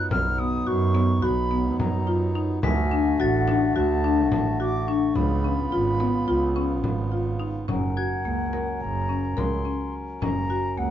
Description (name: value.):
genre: contemporary instrumental, chamber music in an uneven meter.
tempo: 214 BPM (eighths).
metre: 9/8.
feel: straight.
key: Gb lydian from 7.7 s.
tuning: A4 = 442 Hz.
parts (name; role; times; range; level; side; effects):
wooden flute; melody; 0.0-10.9 s; Gb5 to E#6; -30 LUFS; equal; none.
pedal harmonium; sustained chords; 0.0-10.9 s; C#3 to Bb4; -32 LUFS; left 2 dB; none.
marimba with medium hard mallets; arpeggios; 0.0-10.9 s; Bb3 to Bb4; -26 LUFS; left 3 dB; none.
clear double bass; bass; 0.1-10.9 s; Gb1 to F#2; -26 LUFS; right 3 dB; none.
frame drum; percussion; 0.1-10.5 s; none; -30 LUFS; left 2 dB; none.
glockenspiel with soft plastic mallets; texture; 2.6-9.7 s; Ab6 to B6; -36 LUFS; left 4 dB; none.
room: little or no reverb.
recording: dark, warm production, nothing above 7.5 kHz.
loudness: -22 LUFS.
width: side -10 dB against mid.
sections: 0.0-7.7 A section; 7.7-10.9 B section.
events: none.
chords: 0.0 B; 2.6 D; 5.2 C#7; 7.7 Gb.